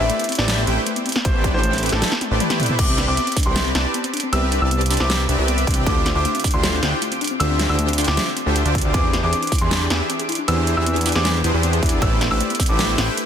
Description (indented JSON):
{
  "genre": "future bass",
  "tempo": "156 BPM",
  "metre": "4/4",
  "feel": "half-time",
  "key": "C major",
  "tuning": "A4 = 440 Hz",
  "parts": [
    { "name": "bright grand piano", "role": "melody", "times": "0.0-12.9 s", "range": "A4 to E6", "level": "-26 LUFS", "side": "equal", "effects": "sidechain pumping, tape echo" },
    { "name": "soft round pluck", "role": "arpeggios", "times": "0.0-13.2 s", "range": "A3 to A4", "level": "-29 LUFS", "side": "left 5 dB", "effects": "chorus, sidechain pumping, digital delay" },
    { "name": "soft supersaw", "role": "riff", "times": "0.0-13.1 s", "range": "D3 to A5", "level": "-23 LUFS", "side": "equal", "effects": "sidechain pumping" },
    { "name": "fat analog bass", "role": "bass", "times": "0.0-13.1 s", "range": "A1 to E2", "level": "-21 LUFS", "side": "equal", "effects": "sidechain pumping" },
    { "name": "dubstep drum kit", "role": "drums", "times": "0.1-13.3 s", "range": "crash cymbal, hi-hat, ride cymbal, snare drum, toms", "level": "-23 LUFS", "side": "right 1 dB", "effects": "none" },
    { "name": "electronic kick drum", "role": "drums", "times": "1.2-12.7 s", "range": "none", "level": "-21 LUFS", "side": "equal", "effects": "none" }
  ],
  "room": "light reverb, digital ambience",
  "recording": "dense, heavily limited modern master",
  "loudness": "-17 LUFS",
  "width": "side -8 dB against mid",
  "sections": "0.0-2.8 A section; 2.8-13.3 A section",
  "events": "drop 0.0-2.8, 2.8-13.3; drum fill 2.2-2.8",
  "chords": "0.0 Am11; 2.8 Cmaj9; 5.9 Dm11; 8.9 E7alt; 12.0 Am11"
}